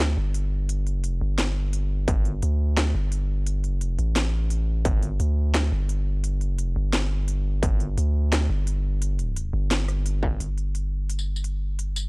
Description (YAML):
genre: half-time drum and bass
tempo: 173 BPM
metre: 4/4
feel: half-time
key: unclear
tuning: A4 = 440 Hz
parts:
  - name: long sustained 808-style bass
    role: bass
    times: 0.0-12.1 s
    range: G1 to D2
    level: -23 LUFS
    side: equal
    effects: none
  - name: drum and bass drum kit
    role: drums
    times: 0.0-12.0 s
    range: hi-hat, rim click, snare drum, tambourine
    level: -28 LUFS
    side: equal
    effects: none
  - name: electronic kick drum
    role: drums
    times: 2.1-2.2, 4.9, 7.6-7.7, 10.2-10.3 s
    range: none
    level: -23 LUFS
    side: equal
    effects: distortion
room: digital ambience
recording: dry, gritty hardware recording, cassette tape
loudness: -22 LUFS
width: side -31 dB against mid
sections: 0.0-10.4 A section; 10.4-12.1 B section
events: none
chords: none